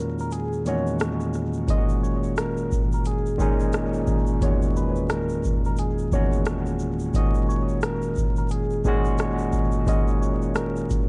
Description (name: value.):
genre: lo-fi hip hop.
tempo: 88 BPM.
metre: 4/4.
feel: swing 62% on 16ths.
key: Eb phrygian.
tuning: A4 = 441 Hz.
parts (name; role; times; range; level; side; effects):
soft struck synth lead; melody; 0.0-11.1 s; G#4 to Eb5; -34 LUFS; equal; chorus, low-pass filter, tape echo.
barky tine electric piano; accompaniment; 0.0-11.1 s; E2 to F#4; -28 LUFS; equal; low-pass filter, tape echo.
tube shaker; percussion; 0.2-11.1 s; none; -55 LUFS; equal; tape echo.
booming analog drum machine; drums; 0.3-11.1 s; hi-hat, kick drum, rim click, shaker; -27 LUFS; equal; none.
room: light reverb.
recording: echo-heavy mix, vinyl crackle, nothing above 10.8 kHz.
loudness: -24 LUFS.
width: mono.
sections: 0.0-11.1 A section.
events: break 0.0-1.7.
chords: 0.0 Emaj9#11; 1.7 Ebm7; 4.4 Emaj9#11; 7.1 Ebm7.